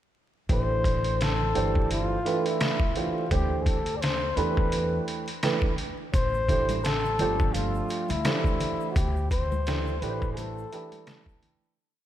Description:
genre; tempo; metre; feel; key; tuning
hip hop, jazz-hop; 85 BPM; 4/4; swing 57% on 16ths; A minor; A4 = 441 Hz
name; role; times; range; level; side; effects
breathy flugelhorn; melody; 0.5-11.4 s; E4 to D5; -30 LUFS; left 3 dB; tape echo
dark upright piano; accompaniment; 0.5-11.7 s; E3 to C5; -30 LUFS; right 5 dB; lush chorus
upright bass; bass; 0.5-10.6 s; G1 to E2; -30 LUFS; equal; none
trip hop sampler-style drum kit; drums; 0.5-11.6 s; hi-hat, kick drum, snare drum; -28 LUFS; equal; none
egg shaker and congas; percussion; 6.1-11.8 s; none; -41 LUFS; left 5 dB; none
room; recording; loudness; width
moderate lush hall reverb, RT60 2.3 s; dreamy mix soaked in reverb, vinyl crackle; -24 LUFS; side -12 dB against mid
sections
0.5-11.8 A section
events
fade-out 9.0-11.8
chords
0.5 Am7; 1.6 Gsus24; 3.3 D7sus4; 4.4 Em7; 6.1 Am7; 7.2 G13sus4; 9.0 D7sus4; 10.0 Am9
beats
| 0.49 1.20 1.90 2.61 | 3.31 4.02 4.73 5.43 | 6.14 6.84 7.55 8.26 | 8.96 9.67 10.37 11.08

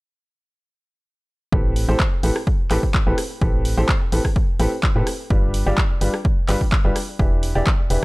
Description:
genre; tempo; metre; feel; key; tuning
piano house; 127 BPM; 4/4; straight; A minor; A4 = 440 Hz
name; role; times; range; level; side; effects
clear upright piano; riff; 1.5-8.0 s; A2 to D5; -24 LUFS; equal; sidechain pumping, tape echo
organ-like FM bass; bass; 1.5-8.0 s; E1 to A2; -21 LUFS; equal; sidechain pumping
electronic kick drum; drums; 1.5-7.8 s; none; -19 LUFS; equal; none
punchy analog drum machine; drums; 1.8-8.0 s; handclaps, hi-hat, rim click; -27 LUFS; equal; none
room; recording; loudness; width
little or no reverb; dry, gritty hardware recording, transformer saturation; -17 LUFS; side -24 dB against mid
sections
1.5-8.0 A section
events
none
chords
1.5 Am9; 5.3 G7; 7.2 Em7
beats
| 1.52 2.00 2.47 2.94 | 3.41 3.89 4.36 4.83 | 5.30 5.78 6.25 6.72 | 7.19 7.67

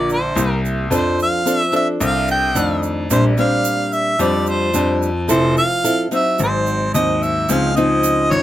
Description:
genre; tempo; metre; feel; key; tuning
bossa nova; 110 BPM; 4/4; straight; F major; A4 = 440 Hz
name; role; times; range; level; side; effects
mellow harmonica; melody; 0.0-8.4 s; C5 to G5; -19 LUFS; right 1 dB; none
nylon-string guitar; accompaniment; 0.0-8.4 s; Ab2 to Bb4; -18 LUFS; left 1 dB; none
bright grand piano; bass; 0.0-8.4 s; F1 to F2; -21 LUFS; left 1 dB; none
tube shaker; percussion; 0.1-8.4 s; none; -28 LUFS; right 12 dB; none
room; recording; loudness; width
light reverb; close, detailed microphones; -15 LUFS; side -13 dB against mid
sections
0.0-7.5 A section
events
none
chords
0.4 C7; 0.9 F6; 2.5 F13; 3.1 Bb69; 5.3 Fmaj7; 6.4 Ab7; 7.5 Dbmaj9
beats
0.35 | 0.90 1.45 2.00 2.54 | 3.09 3.64 4.19 4.74 | 5.29 5.83 6.38 6.93 | 7.48 8.03

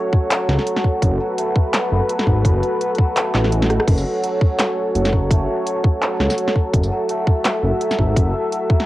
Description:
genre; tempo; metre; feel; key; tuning
half-time drum and bass; 168 BPM; 4/4; swing 55% on 16ths, half-time; F# minor; A4 = 440 Hz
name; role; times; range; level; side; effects
dark analog pad; sustained chords; 0.0-8.9 s; F#4 to E5; -21 LUFS; equal; chorus, sidechain pumping, cassette tape
santur; arpeggios; 0.0-8.9 s; F#3 to F#4; -30 LUFS; right 1 dB; cassette tape, tape echo
electronic kick drum; drums; 0.1-8.8 s; none; -16 LUFS; equal; overdrive, cassette tape
drum and bass drum kit; drums; 0.3-8.9 s; crash cymbal, handclaps, hi-hat, rim click, snare drum, tambourine; -21 LUFS; equal; overdrive, cassette tape
dark detuned saw bass; bass; 0.5-8.3 s; F#1 to C#2; -19 LUFS; equal; none
room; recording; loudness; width
moderate studio reverb, RT60 0.6 s; home recording on cassette; -16 LUFS; side -16 dB against mid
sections
0.0-8.9 A section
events
kick drops out 3.5-3.9; drum fill 3.7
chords
0.0 F#m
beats
0.31 0.66 | 1.02 1.38 1.74 2.09 | 2.45 2.81 3.16 3.52 | 3.88 4.24 4.59 4.95 | 5.31 5.66 6.02 6.38 | 6.74 7.09 7.45 7.81 | 8.16 8.52

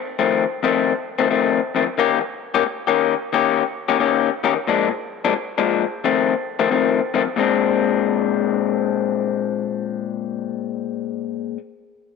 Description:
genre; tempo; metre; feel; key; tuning
blues; 89 BPM; 4/4; swing 66% on 8ths; Bb mixolydian; A4 = 440 Hz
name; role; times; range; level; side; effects
electric guitar through a small old amp; solo; 0.2-11.6 s; F2 to G4; -18 LUFS; left 8 dB; none
room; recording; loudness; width
wet spring reverb, RT60 2.0 s; none; -18 LUFS; side -4 dB against mid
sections
0.0-7.4 A section; 7.4-10.1 B section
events
none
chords
0.0 F7; 2.0 Eb7; 4.7 Bb7; 6.0 F7; 7.4 Bb9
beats
0.63 1.30 | 1.98 2.66 3.33 4.01 | 4.68 5.36 6.03 6.71 | 7.38 8.05 8.73 9.40

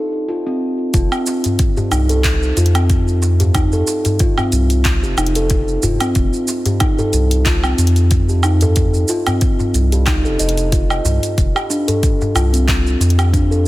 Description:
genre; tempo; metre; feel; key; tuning
organic downtempo; 92 BPM; 4/4; swing 55% on 16ths; F mixolydian; A4 = 439 Hz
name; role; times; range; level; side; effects
steel tongue drum; arpeggios; 0.3-13.6 s; C4 to Eb5; -19 LUFS; equal; digital delay
round analog bass; bass; 0.9-13.7 s; F1 to F2; -15 LUFS; equal; sidechain pumping
deep house drum kit; drums; 0.9-13.6 s; handclaps, hi-hat, shaker, woodblock; -22 LUFS; right 1 dB; none
electronic kick drum; drums; 0.9-13.5 s; none; -17 LUFS; equal; none
darbuka; percussion; 1.3-13.2 s; none; -23 LUFS; left 1 dB; none
room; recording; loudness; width
light reverb, digital ambience; dense, heavily limited modern master, faint mains hum; -13 LUFS; side -17 dB against mid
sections
0.9-13.7 A section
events
break 0.0-0.9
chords
0.0 F5; 11.4 G5/F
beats
0.29 | 0.94 1.59 2.25 2.90 | 3.55 4.20 4.85 5.51 | 6.16 6.81 7.46 8.12 | 8.77 9.42 10.07 10.72 | 11.38 12.03 12.68 13.33

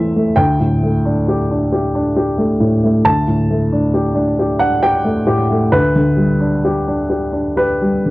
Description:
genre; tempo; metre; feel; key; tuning
neoclassical minimalist piano; 67 BPM; 3/4; rubato; unclear; A4 = 440 Hz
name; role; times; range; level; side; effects
dark baby grand piano; solo; 0.0-8.1 s; D2 to E6; -13 LUFS; equal; none
room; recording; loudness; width
light reverb; dry, close 1970s-style studio recording; -13 LUFS; side -19 dB against mid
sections
0.0-8.1 A section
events
none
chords
0.4 Dsus4; 5.7 G/D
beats
| 0.38 1.27 2.16 | 3.05 3.94 4.83 | 5.74 6.65 7.57

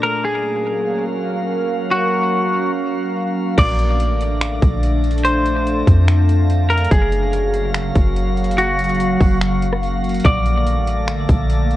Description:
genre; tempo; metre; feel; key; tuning
hip hop, atmospheric cloud-rap; 144 BPM; 4/4; half-time; unclear; A4 = 440 Hz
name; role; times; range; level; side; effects
semi-hollow electric guitar; melody; 0.0-11.0 s; Gb4 to D5; -21 LUFS; equal; ping-pong delay
warbly tape-like pad; sustained chords; 0.0-11.8 s; Bb2 to F5; -22 LUFS; equal; chorus, built-in reverb, phaser, sidechain pumping
drifting glass-harmonics texture; texture; 0.0-11.8 s; A3 to Bb6; -29 LUFS; equal; chorus, built-in reverb
soft 808-style bass; bass; 3.6-11.8 s; Gb1 to F2; -18 LUFS; equal; none
trap drum kit; drums; 3.6-11.8 s; crash cymbal, finger snaps, hi-hat, kick drum, rim click; -17 LUFS; equal; overdrive, vintage 12-bit sampler grit
room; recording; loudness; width
little or no reverb; worn, warbling old tape, cassette tape, warbly pitch drift; -15 LUFS; side -14 dB against mid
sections
0.0-3.6 A section; 3.6-11.8 B section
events
none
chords
0.2 Gbmaj7; 3.6 Bbmaj7; 6.9 Gbmaj7; 10.2 Bbmaj7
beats
| 0.25 0.66 1.08 1.50 | 1.91 2.33 2.75 3.16 | 3.58 4.00 4.41 4.83 | 5.25 5.66 6.08 6.50 | 6.91 7.33 7.75 8.16 | 8.58 9.00 9.41 9.83 | 10.25 10.66 11.08 11.50

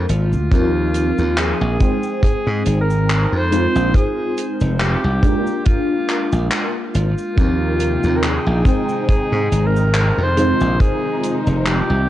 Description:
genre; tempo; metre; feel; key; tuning
vaporwave; 70 BPM; 4/4; swing 55% on 16ths; unclear; A4 = 440 Hz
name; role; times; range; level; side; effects
FM electric piano with soft pad layer; accompaniment; 0.0-12.1 s; F3 to G5; -21 LUFS; equal; tremolo, ensemble chorus
glassy slap bass; bass; 0.0-12.1 s; F1 to Ab2; -18 LUFS; equal; none
clear alto saxophone; melody; 0.1-12.1 s; F4 to C5; -23 LUFS; equal; tape echo
damped 70s drum kit; drums; 0.1-11.9 s; cabasa, handclaps, hi-hat; -24 LUFS; equal; none
kick drum; drums; 0.5-11.0 s; none; -15 LUFS; equal; none
warm studio string section; sustained chords; 7.4-12.1 s; C3 to G5; -26 LUFS; left 1 dB; none
room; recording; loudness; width
light reverb, small room ambience; dark, warm production, cassette tape; -15 LUFS; side -13 dB against mid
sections
0.0-12.1 A section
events
none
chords
0.0 Bb7; 0.5 Ebsus2; 1.8 Abmaj7; 3.5 Fm7; 5.2 Bb7; 7.4 Eb69; 8.7 Abmaj7; 10.4 Fm7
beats
| 0.52 1.38 2.23 3.09 | 3.95 4.80 5.66 6.52 | 7.38 8.23 9.09 9.95 | 10.80 11.66

